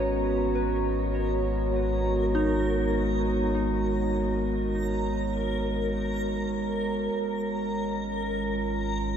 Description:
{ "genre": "ambient", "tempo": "free time", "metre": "none", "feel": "none", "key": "G# minor", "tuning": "A4 = 438 Hz", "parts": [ { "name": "warbly tape-like pad", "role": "sustained chords", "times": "0.0-9.2 s", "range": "G#3 to A#5", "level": "-27 LUFS", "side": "right 1 dB", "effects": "chorus, built-in reverb, shimmer reverb" }, { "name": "soft synth bell", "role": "arpeggios", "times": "0.0-7.2 s", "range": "D#4 to C#5", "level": "-35 LUFS", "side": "equal", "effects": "chorus, tape echo, shimmer reverb" }, { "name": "warm sub bass", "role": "bass", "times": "0.0-9.2 s", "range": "G#1", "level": "-32 LUFS", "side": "equal", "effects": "none" }, { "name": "backwards swelling texture", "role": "texture", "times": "0.0-9.2 s", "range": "A#4 to A#5", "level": "-34 LUFS", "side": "equal", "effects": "built-in reverb, shimmer reverb" } ], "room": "wet cathedral reverb, RT60 6.9 s", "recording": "in a vast, echoing space", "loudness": "-25 LUFS", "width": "side -8 dB against mid", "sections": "0.0-9.2 A section", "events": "none", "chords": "0.0 G#m11; 7.1 A#m7/G#" }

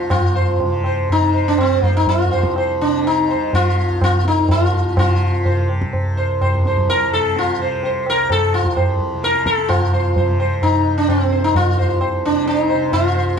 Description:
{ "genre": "indian classical, Hindustani", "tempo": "121-132 BPM", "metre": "5/4", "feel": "straight", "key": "C raga bageshri", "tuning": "A4 = 440 Hz", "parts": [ { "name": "sitar", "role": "melody", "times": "0.0-13.4 s", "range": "C4 to C5", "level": "-17 LUFS", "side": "equal", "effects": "none" }, { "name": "tanpura", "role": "drone", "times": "0.0-13.4 s", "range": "C2 to C3", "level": "-26 LUFS", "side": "left 1 dB", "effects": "none" }, { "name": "tabla", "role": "percussion", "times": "0.1-13.1 s", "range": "none", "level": "-19 LUFS", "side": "right 1 dB", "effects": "none" } ], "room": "moderate small room ambience, RT60 0.5 s", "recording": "dark, warm production", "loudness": "-15 LUFS", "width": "side -6 dB against mid", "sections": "0.1-9.7 A section; 9.7-13.4 A section", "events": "speeding up 0.0-13.4", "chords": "none" }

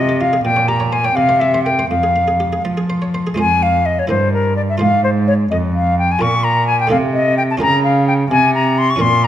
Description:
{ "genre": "classical, baroque-style sonata movement with continuo", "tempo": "85 BPM (dotted quarters)", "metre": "6/8", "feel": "rubato", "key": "F minor", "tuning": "A4 = 442 Hz", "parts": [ { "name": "silver concert flute", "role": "melody", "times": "0.0-9.3 s", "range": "Bb4 to Db6", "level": "-15 LUFS", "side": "left 2 dB", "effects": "none" }, { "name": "buff-stop harpsichord", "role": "accompaniment", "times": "0.0-9.3 s", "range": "F2 to F5", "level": "-23 LUFS", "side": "right 2 dB", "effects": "none" }, { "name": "rich cello", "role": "bass", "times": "0.0-9.3 s", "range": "F2 to F3", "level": "-17 LUFS", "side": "right 2 dB", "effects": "none" } ], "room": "moderate recital hall reverb, RT60 1.4 s", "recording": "none", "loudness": "-13 LUFS", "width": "side -11 dB against mid", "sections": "0.0-3.4 A section; 3.4-9.3 B section", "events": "none", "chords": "0.4 Gdim/Bb; 1.2 C5; 1.9 Fm; 4.1 Edim/G; 4.8 Fm/Ab; 6.2 Bb5; 6.9 Adim/C; 7.6 Bbm/Db" }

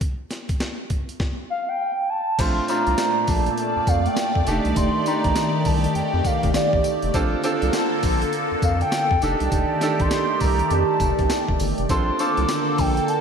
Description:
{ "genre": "R&B, new jack swing", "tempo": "101 BPM", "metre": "4/4", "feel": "swing 62% on 16ths", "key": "unclear", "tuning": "A4 = 440 Hz", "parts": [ { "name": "breakbeat sampler-style drum kit", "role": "drums", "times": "0.0-13.2 s", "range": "crash cymbal, hi-hat, kick drum, snare drum, tambourine", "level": "-26 LUFS", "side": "equal", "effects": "none" }, { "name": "hollow clarinet-like synth lead", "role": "melody", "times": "1.5-13.2 s", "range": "D5 to D6", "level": "-24 LUFS", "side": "equal", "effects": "chorus, ping-pong delay" }, { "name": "bright concert grand piano", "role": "accompaniment", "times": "2.4-13.2 s", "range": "A3 to A4", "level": "-26 LUFS", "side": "right 3 dB", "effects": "none" }, { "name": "phased analog pad", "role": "sustained chords", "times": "2.7-13.2 s", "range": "Bb2 to D5", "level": "-24 LUFS", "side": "equal", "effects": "phaser, chorus" }, { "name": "round analog bass", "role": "bass", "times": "2.4-13.0 s", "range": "F1 to F2", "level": "-24 LUFS", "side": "equal", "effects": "none" } ], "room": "wet lush hall reverb, RT60 2.1 s", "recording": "dreamy mix soaked in reverb", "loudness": "-19 LUFS", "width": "side -6 dB against mid", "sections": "0.0-2.4 A section; 2.4-13.2 B section", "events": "none", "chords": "0.0 N.C.; 2.4 Bbmaj7; 4.5 F13; 7.1 Bbmaj7; 9.2 F13; 11.9 Bbmaj7" }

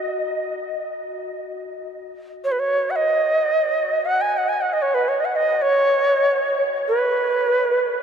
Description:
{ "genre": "world meditative", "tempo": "free time", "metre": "none", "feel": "none", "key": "unclear", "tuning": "A4 = 440 Hz", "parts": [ { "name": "Native American-style cedar flute", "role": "melody", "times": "0.0-8.0 s", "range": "B4 to G#5", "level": "-19 LUFS", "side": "right 1 dB", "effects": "diffuse ambient delay" } ], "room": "wet huge ambient reverb, RT60 7.1 s", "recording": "dark, warm production", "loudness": "-18 LUFS", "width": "side -7 dB against mid", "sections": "0.0-8.0 A section", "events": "none", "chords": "none" }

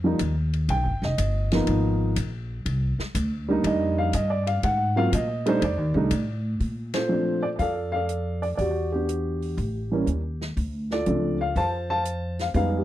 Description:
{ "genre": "jazz piano trio", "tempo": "121 BPM", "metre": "4/4", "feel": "swing 68% on 8ths", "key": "G minor, Bb major from 6.6 s", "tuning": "A4 = 440 Hz", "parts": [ { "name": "dark upright piano", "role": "melody", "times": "0.0-12.8 s", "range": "E3 to A5", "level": "-24 LUFS", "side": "equal", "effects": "slapback echo" }, { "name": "upright bass", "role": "bass", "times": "0.0-12.8 s", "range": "F1 to Bb2", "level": "-26 LUFS", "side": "equal", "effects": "none" }, { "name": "open jazz drum kit", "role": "drums", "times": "0.2-12.7 s", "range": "hi-hat, kick drum, ride cymbal, snare drum", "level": "-36 LUFS", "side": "left 1 dB", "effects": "none" } ], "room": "little or no reverb", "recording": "dry, close 1970s-style studio recording", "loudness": "-23 LUFS", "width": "side -14 dB against mid", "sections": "0.0-6.6 A section; 6.6-12.8 B section", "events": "upright piano solo 0.0-6.6; band accent 6.9", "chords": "0.0 Ebsus2; 0.7 G7alt; 2.7 Cm9; 4.6 Ab13; 5.6 F13; 6.6 Bbmaj9; 8.6 Em9; 9.6 A7(no3); 10.6 Dm7" }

